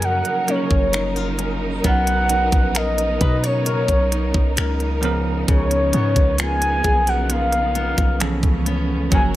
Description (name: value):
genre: contemporary R&B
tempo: 66 BPM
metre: 4/4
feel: straight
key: unclear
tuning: A4 = 441 Hz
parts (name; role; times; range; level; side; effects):
- mellow horn-like synth lead; melody; 0.0-9.2 s; C#5 to G#5; -22 LUFS; equal; chorus
- bell-like tine electric piano; accompaniment; 0.0-9.4 s; E3 to A#4; -27 LUFS; right 4 dB; medium stereo tremolo
- warm studio string section; sustained chords; 0.0-9.4 s; C#3 to A#4; -28 LUFS; right 1 dB; none
- flamenco guitar; arpeggios; 0.0-9.4 s; C#3 to C#5; -28 LUFS; left 7 dB; tape echo
- warm 808-style bass; bass; 0.0-9.4 s; F#1 to B2; -23 LUFS; equal; none
- trap drum kit; drums; 0.0-9.3 s; finger snaps, hi-hat, kick drum; -20 LUFS; equal; none
room: digital ambience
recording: none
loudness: -17 LUFS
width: side -15 dB against mid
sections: 0.0-9.4 A section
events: none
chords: 0.0 F#maj7; 1.8 Bmaj9; 5.0 C#13; 8.2 C#7alt